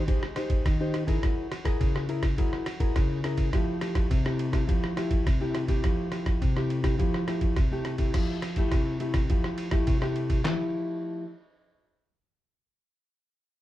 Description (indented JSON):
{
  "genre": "samba and choro",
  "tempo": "104 BPM",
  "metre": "4/4",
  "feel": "straight",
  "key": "F major",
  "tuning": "A4 = 440 Hz",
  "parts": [
    { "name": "nylon-string guitar", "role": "accompaniment", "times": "0.0-11.2 s", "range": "C3 to C5", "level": "-29 LUFS", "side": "left 1 dB", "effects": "none" },
    { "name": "lo-fi sampler-style drum kit", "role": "drums", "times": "0.1-10.6 s", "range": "crash cymbal, handclaps, kick drum, ride cymbal, rim click, snare drum", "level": "-26 LUFS", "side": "equal", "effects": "none" }
  ],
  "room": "wet small room reverb, RT60 0.5 s",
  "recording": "heard from further back in the room",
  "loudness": "-25 LUFS",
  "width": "side -14 dB against mid",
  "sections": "0.0-8.2 A section; 8.2-10.5 B section; 10.5-12.8 C section",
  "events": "none",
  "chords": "0.0 Abmaj7; 1.2 Gb9; 3.5 Fmaj9"
}